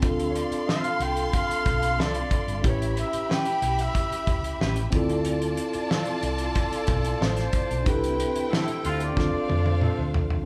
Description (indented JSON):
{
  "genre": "lush 1970s-style soul",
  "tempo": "92 BPM",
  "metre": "4/4",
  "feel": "straight",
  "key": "D dorian",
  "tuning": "A4 = 440 Hz",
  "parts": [
    { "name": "warm studio violin section", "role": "second line", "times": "0.0-10.4 s", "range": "C4 to C6", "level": "-35 LUFS", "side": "equal", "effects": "none" },
    { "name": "mellow tine electric piano", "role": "accompaniment", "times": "0.0-10.5 s", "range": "C4 to B4", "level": "-33 LUFS", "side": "equal", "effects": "none" },
    { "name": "hollow-body short-scale fingered electric bass", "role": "bass", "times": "0.0-10.4 s", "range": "G1 to F2", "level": "-31 LUFS", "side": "equal", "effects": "none" },
    { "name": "damped 70s drum kit", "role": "drums", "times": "0.0-10.5 s", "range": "hi-hat, kick drum, snare drum, toms", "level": "-30 LUFS", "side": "equal", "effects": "none" },
    { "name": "breathy flugelhorn", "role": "melody", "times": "0.3-10.2 s", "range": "A4 to G5", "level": "-32 LUFS", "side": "equal", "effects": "none" },
    { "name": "electric guitar through a small old amp", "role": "riff", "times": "0.7-10.0 s", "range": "C4 to B4", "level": "-37 LUFS", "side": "equal", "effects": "none" },
    { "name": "warm horn section", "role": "stabs", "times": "8.8-9.3 s", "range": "D3 to F4", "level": "-34 LUFS", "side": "equal", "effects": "none" }
  ],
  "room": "moderate large studio reverb, RT60 0.8 s",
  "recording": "band playing live in one room",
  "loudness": "-25 LUFS",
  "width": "mono",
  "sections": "0.0-10.5 A section",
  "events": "band accent 7.9-10.5; drum fill 9.2-10.5",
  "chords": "0.0 Dm7; 2.6 A9; 4.9 Dm7; 7.9 C6; 9.2 Dm7",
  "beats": "| 0.03 0.68 1.33 1.99 | 2.64 3.29 3.95 4.60 | 5.25 5.91 6.56 7.21 | 7.87 8.52 9.17 9.82"
}